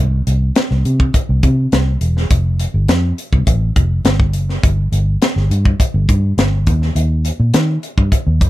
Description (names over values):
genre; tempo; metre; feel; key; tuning
polished 1980s jazz-funk pop; 103 BPM; 4/4; straight; unclear; A4 = 443 Hz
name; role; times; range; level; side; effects
vintage muted fingered electric bass; bass; 0.0-8.5 s; E1 to Eb3; -14 LUFS; equal; none
crisp fusion drum kit; drums; 0.3-8.5 s; hi-hat, kick drum, snare drum; -16 LUFS; equal; none
room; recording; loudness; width
little or no reverb; none; -13 LUFS; side -16 dB against mid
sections
0.0-8.5 A section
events
none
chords
none